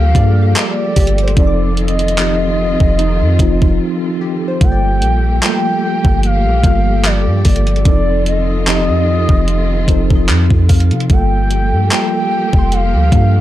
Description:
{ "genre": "contemporary R&B", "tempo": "74 BPM", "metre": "4/4", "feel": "swing 54% on 16ths", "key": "G minor", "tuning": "A4 = 440 Hz", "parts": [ { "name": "gliding portamento lead", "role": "melody", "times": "0.0-13.4 s", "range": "D5 to G5", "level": "-19 LUFS", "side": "equal", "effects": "chorus, digital delay" }, { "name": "mellow tine electric piano", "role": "accompaniment", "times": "0.0-13.4 s", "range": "F3 to A4", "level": "-19 LUFS", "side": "equal", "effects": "medium stereo tremolo" }, { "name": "warm studio string section", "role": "sustained chords", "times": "0.0-13.4 s", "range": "Eb3 to A4", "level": "-24 LUFS", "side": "right 1 dB", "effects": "sidechain pumping" }, { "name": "warm 808-style bass", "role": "bass", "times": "0.0-13.4 s", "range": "F1 to C3", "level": "-14 LUFS", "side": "equal", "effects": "none" }, { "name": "glassy wavetable pluck", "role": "texture", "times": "0.0-13.4 s", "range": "Eb4 to D6", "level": "-29 LUFS", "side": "right 3 dB", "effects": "chorus, digital delay" }, { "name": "gated 80s digital drum machine", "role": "drums", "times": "0.1-13.3 s", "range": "handclaps, hi-hat, kick drum", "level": "-14 LUFS", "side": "equal", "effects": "gated reverb" } ], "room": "digital ambience", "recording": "dark, warm production", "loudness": "-11 LUFS", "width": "side -14 dB against mid", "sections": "0.0-13.4 A section", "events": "break 3.8-4.6", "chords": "0.0 Gm9; 1.4 F7; 4.6 Gm9; 7.9 F7; 11.1 Gm9" }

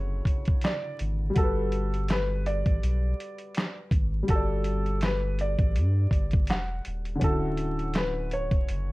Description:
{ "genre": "lo-fi hip hop", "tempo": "82 BPM", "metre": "4/4", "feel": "swing 58% on 16ths", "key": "unclear", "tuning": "A4 = 440 Hz", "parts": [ { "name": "felt-muted upright piano", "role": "melody", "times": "0.0-8.9 s", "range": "A4 to F#5", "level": "-33 LUFS", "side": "equal", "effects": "none" }, { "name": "dark upright piano", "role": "accompaniment", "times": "0.0-8.9 s", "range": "C#3 to D5", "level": "-34 LUFS", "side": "left 1 dB", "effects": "cassette tape" }, { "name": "saturated sub bass", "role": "bass", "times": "0.0-8.9 s", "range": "D1 to G2", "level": "-28 LUFS", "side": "equal", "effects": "none" }, { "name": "dusty soul sampler-style drum kit", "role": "drums", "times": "0.3-8.9 s", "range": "handclaps, hi-hat, kick drum, snare drum", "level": "-26 LUFS", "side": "equal", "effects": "vintage 12-bit sampler grit" } ], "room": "light reverb", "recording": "dark, warm production, vinyl crackle", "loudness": "-24 LUFS", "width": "side -20 dB against mid", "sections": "0.0-8.9 A section", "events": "none", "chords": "0.0 Dmaj9; 1.4 Gmaj9; 7.2 Dmaj9" }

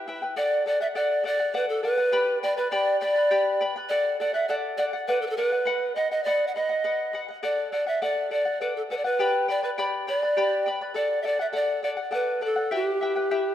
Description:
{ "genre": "andean folk", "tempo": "68 BPM (dotted quarters)", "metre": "6/8", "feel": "straight", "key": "unclear", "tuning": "A4 = 440 Hz", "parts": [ { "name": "charango", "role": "accompaniment", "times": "0.0-13.5 s", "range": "E4 to B5", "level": "-29 LUFS", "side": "left 3 dB", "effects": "none" }, { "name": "mellow polished pan flute", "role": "melody", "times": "0.4-13.5 s", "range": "G4 to F#5", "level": "-24 LUFS", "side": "right 1 dB", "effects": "none" } ], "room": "moderate concert hall reverb, RT60 2.2 s", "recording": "minimal, uncompressed stereo recording", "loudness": "-23 LUFS", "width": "side -11 dB against mid", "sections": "0.4-13.5 A section", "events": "none", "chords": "0.4 D; 2.1 G; 3.9 D; 5.7 B; 7.4 D; 9.2 G; 11.0 D; 12.7 Em" }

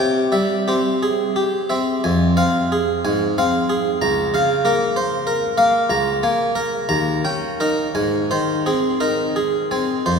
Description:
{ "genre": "classical, baroque-style suite movement for harpsichord", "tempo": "56-65 BPM (dotted quarters)", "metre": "6/8", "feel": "rubato", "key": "Ab major from 5.9 s", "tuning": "A4 = 439 Hz", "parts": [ { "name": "harpsichord", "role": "solo", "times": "0.0-10.2 s", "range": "Db2 to Bb5", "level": "-17 LUFS", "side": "equal", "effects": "none" } ], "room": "wet cathedral reverb, RT60 5.4 s", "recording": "recorded in a church or concert hall", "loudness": "-17 LUFS", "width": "side -5 dB against mid", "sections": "0.0-10.1 A section", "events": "none", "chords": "0.0 C; 2.0 Fm; 3.0 Fm/Ab; 4.0 Bbm/Db; 5.9 Bbm7/Db; 6.9 Eb7; 7.9 Ab" }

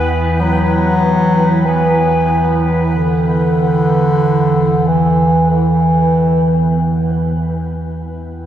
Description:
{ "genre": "dark ambient drone", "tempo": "free time", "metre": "none", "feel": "none", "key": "E minor", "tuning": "A4 = 439 Hz", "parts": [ { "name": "warm bass clarinet", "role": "melody", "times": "0.0-6.7 s", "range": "D3 to F#3", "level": "-15 LUFS", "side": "equal", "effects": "diffuse ambient delay" }, { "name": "granular cloud pad", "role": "sustained chords", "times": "0.0-8.5 s", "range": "E4 to G5", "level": "-26 LUFS", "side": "equal", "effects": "built-in reverb" }, { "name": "deep rumbling drone", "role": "drone", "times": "0.0-8.5 s", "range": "E2 to E3", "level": "-15 LUFS", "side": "right 1 dB", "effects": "built-in reverb" }, { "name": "bubbling stepped-filter texture", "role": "texture", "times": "0.0-8.1 s", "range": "B3 to B4", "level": "-23 LUFS", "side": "left 2 dB", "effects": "chorus, built-in reverb" } ], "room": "wet cathedral reverb, RT60 5.7 s", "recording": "dreamy mix soaked in reverb", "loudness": "-11 LUFS", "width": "side -10 dB against mid", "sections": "0.0-8.1 A section", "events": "fade-out on ambient pad 0.0-8.1; filter sweep on synth drone 0.0-8.1", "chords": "0.0 Em" }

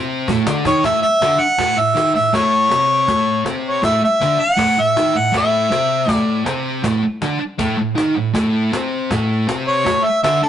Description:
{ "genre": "garage rock duo or trio", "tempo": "160 BPM", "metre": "4/4", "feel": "straight", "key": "unclear", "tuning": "A4 = 441 Hz", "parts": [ { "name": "fuzz guitar", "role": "riff", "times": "0.0-10.5 s", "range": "A2 to D#4", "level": "-19 LUFS", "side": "equal", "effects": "distortion" }, { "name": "cajon", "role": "drums", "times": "0.3-10.3 s", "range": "none", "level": "-25 LUFS", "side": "equal", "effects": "none" }, { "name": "clear harmonica", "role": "melody", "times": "0.7-6.4, 9.7-10.5 s", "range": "A4 to F#5", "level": "-15 LUFS", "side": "equal", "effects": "overdrive" } ], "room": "moderate stone room reverb, RT60 0.9 s", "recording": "rough rehearsal-room recording, tube saturation, nothing above 11.0 kHz", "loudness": "-14 LUFS", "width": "side -10 dB against mid", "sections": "0.9-10.5 A section", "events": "none", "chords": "0.0 Gsus4 (rootless)" }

